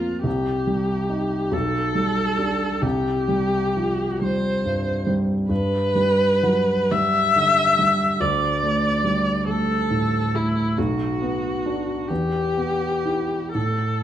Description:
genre	classical, romantic duo for viola and grand piano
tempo	40-48 BPM (dotted quarters)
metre	6/8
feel	rubato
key	D major from 5.5 s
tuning	A4 = 440 Hz
part	rich viola	melody	0.0-14.0 s	E4 to E5	-22 LUFS	left 1 dB	none
part	warm grand piano	accompaniment	0.0-14.0 s	Bb1 to G4	-23 LUFS	right 1 dB	none
room	wet stone room reverb, RT60 1.2 s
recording	dark, warm production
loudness	-19 LUFS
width	side -10 dB against mid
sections	0.0-14.0 A section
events	none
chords	0.3 Cm; 1.5 G/B; 2.8 C5; 5.5 G; 8.2 D5; 10.8 Bm; 12.1 Em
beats	| 0.25 1.53 | 2.84 4.23 | 5.50 6.92 | 8.21 9.48 | 10.78 12.10 | 13.55

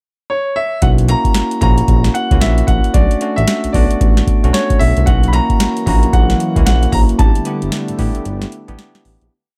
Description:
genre	R&B, new jack swing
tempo	113 BPM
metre	4/4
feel	swing 61% on 16ths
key	unclear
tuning	A4 = 439 Hz
part	warm concert grand piano	melody	0.3-8.7 s	C#5 to B5	-22 LUFS	equal	none
part	bell-like tine electric piano	accompaniment	0.8-9.3 s	A3 to G4	-22 LUFS	equal	none
part	smooth synth bass	bass	0.8-9.3 s	G1 to C#2	-17 LUFS	equal	none
part	booming analog drum machine	drums	0.8-9.3 s	hi-hat, kick drum, snare drum	-17 LUFS	equal	none
part	chorused pulse-width pad	sustained chords	5.4-9.3 s	D3 to A#3	-25 LUFS	equal	none
room	digital ambience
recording	none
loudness	-14 LUFS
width	mono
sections	0.0-0.8 pickup bar; 0.8-9.3 pre-chorus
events	fade-out 7.2-9.3; break 8.3-9.3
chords	0.0 N.C.; 0.8 F#7; 2.9 Bm7; 5.1 F#7; 7.2 A7sus4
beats	0.29 | 0.82 1.35 1.88 2.41 | 2.94 3.48 4.01 4.54 | 5.07 5.60 6.13 6.66 | 7.19 7.72 8.26 8.79

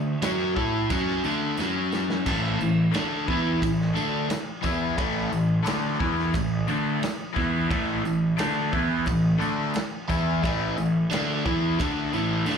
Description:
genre	classic rock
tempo	88 BPM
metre	4/4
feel	straight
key	unclear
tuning	A4 = 440 Hz
part	crunchy overdriven guitar	riff	0.0-12.6 s	A2 to A4	-28 LUFS	left 11 dB	none
part	overdriven electric guitar	riff	0.0-12.6 s	A2 to A4	-26 LUFS	right 6 dB	phaser, slapback echo
part	fuzz picked electric bass	bass	0.0-12.6 s	A1 to A2	-30 LUFS	left 1 dB	overdrive
part	vintage drum kit	drums	0.2-12.6 s	crash cymbal, kick drum, ride cymbal, snare drum, splash cymbal	-31 LUFS	equal	none
part	tambourine	percussion	0.2-12.6 s	none	-48 LUFS	left 6 dB	none
room	small room ambience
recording	live gig heard through the venue's PA, club reverb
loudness	-22 LUFS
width	side -6 dB against mid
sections	0.0-12.6 A section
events	drum fill 1.6-2.3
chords	0.0 D5; 1.6 F#5; 2.3 A5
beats	0.21 0.90 1.57 | 2.25 2.94 3.62 4.30 | 4.98 5.66 6.34 7.02 | 7.70 8.38 9.06 9.74 | 10.43 11.11 11.79 12.47

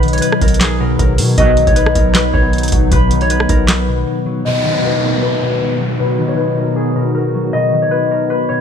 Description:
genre	hip hop, trap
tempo	156 BPM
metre	4/4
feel	half-time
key	B major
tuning	A4 = 440 Hz
part	concert harp	melody	0.0-8.6 s	G#4 to D#5	-18 LUFS	left 2 dB	low-pass filter, tape echo
part	concert harp	accompaniment	0.0-8.6 s	B2 to B4	-19 LUFS	left 4 dB	low-pass filter
part	hollow soft pad	sustained chords	0.0-8.6 s	B2 to F#4	-21 LUFS	equal	ensemble chorus, low-pass filter
part	hard-hitting 808-style bass	bass	0.0-4.0 s	B1 to B2	-17 LUFS	right 1 dB	none
part	booming analog drum machine	drums	0.0-3.8 s	handclaps, hi-hat, kick drum, rim click, snare drum	-15 LUFS	right 1 dB	vintage 12-bit sampler grit
part	warm brass ensemble	stabs	1.4-1.7 s	B2 to F#3	-22 LUFS	right 6 dB	none
part	downlifter	sound effects	4.5-7.5 s	none	-23 LUFS	right 1 dB	none
room	small room ambience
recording	none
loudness	-12 LUFS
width	side -7 dB against mid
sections	0.0-4.5 A section; 4.5-8.6 B section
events	break 4.1-4.5; filter sweep 4.5-8.6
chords	0.0 B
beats	0.22 0.61 0.99 | 1.38 1.76 2.15 2.53 | 2.92 3.30 3.68 4.07 | 4.45 4.84 5.22 5.61 | 5.99 6.38 6.76 7.15 | 7.53 7.92 8.30

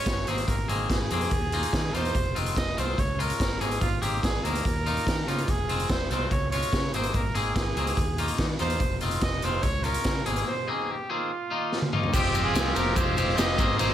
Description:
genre	indie rock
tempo	144 BPM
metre	4/4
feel	straight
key	Ab major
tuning	A4 = 439 Hz
part	clear trumpet	melody	0.0-13.9 s	F4 to Eb5	-31 LUFS	right 3 dB	slapback echo
part	twangy electric guitar	riff	0.0-13.9 s	Eb3 to Ab4	-30 LUFS	left 4 dB	none
part	modern bright picked electric bass	bass	0.1-13.9 s	F1 to Eb3	-31 LUFS	equal	none
part	raw garage drum kit	drums	0.1-13.9 s	crash cymbal, hi-hat, kick drum, ride cymbal, snare drum, toms	-28 LUFS	equal	none
part	glockenspiel with soft plastic mallets	second line	12.1-13.9 s	C6 to C7	-39 LUFS	right 8 dB	none
part	overdriven electric guitar	riff	12.1-13.9 s	Ab2 to F4	-32 LUFS	right 10 dB	wide subtle chorus
part	egg shaker	percussion	12.1-13.9 s	none	-43 LUFS	right 17 dB	none
room	studio ambience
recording	none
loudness	-24 LUFS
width	side -11 dB against mid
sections	0.0-12.1 A section; 12.1-13.9 B section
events	drum fill 11.7-12.1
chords	0.3 Abadd9; 1.3 Ebsus2; 2.1 Fm7; 3.0 Db; 3.6 Abadd9; 4.6 Ebsus2; 5.5 Fm7; 6.3 Db; 6.9 Abadd9; 8.0 Ebsus2; 8.8 Fm7; 9.6 Db; 10.3 Abadd9; 11.3 Ebsus2; 12.1 Fmadd9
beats	0.07 | 0.48 0.90 1.32 1.73 | 2.15 2.57 2.98 3.40 | 3.81 4.23 4.65 5.06 | 5.48 5.90 6.31 6.73 | 7.14 7.56 7.98 8.39 | 8.81 9.22 9.64 10.05 | 10.47 10.89 11.30 11.72 | 12.13 12.55 12.96 13.38 | 13.79

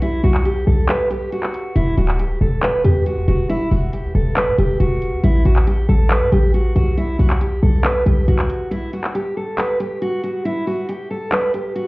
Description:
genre	hip hop, trap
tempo	138 BPM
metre	4/4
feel	half-time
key	E minor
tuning	A4 = 440 Hz
part	picked steel-string acoustic guitar	melody	0.0-11.9 s	E4 to B4	-20 LUFS	equal	tape echo
part	short 808-style bass	bass	0.0-8.5 s	D1 to B2	-16 LUFS	equal	none
part	trap drum kit	drums	0.0-11.9 s	handclaps, hi-hat	-23 LUFS	equal	none
room	little or no reverb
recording	heard muffled through a wall, club reverb, EQ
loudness	-16 LUFS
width	side -22 dB against mid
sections	0.0-11.9 A section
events	break 0.9-1.8, 8.7-11.9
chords	0.0 B5; 1.8 Esus2; 5.2 Gmaj9/A; 7.0 B5; 8.7 N.C.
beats	| 0.02 0.45 0.89 1.32 | 1.76 2.19 2.63 3.06 | 3.50 3.93 4.37 4.80 | 5.24 5.67 6.11 6.54 | 6.97 7.41 7.84 8.28 | 8.71 9.15 9.58 10.02 | 10.45 10.89 11.32 11.76

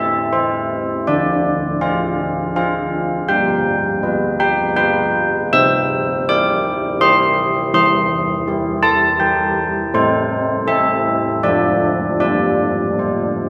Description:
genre	classical, tune for church bells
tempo	81 BPM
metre	3/4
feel	straight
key	C major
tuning	A4 = 440 Hz
part	old church bells	solo	0.0-13.5 s	D3 to E6	-17 LUFS	equal	none
room	moderate concert hall reverb, RT60 2.4 s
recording	none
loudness	-17 LUFS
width	mono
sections	0.0-13.5 A section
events	none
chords	0.0 Am (rootless); 1.1 Dm7; 3.3 G7; 5.5 C; 7.7 C/E; 9.9 Am; 11.4 Dm/F; 12.2 Gsus4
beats	0.32 | 1.07 1.81 2.55 | 3.29 4.03 4.77 | 5.54 6.28 7.01 | 7.75 8.48 9.21 | 9.95 10.69 11.44 | 12.21 12.99

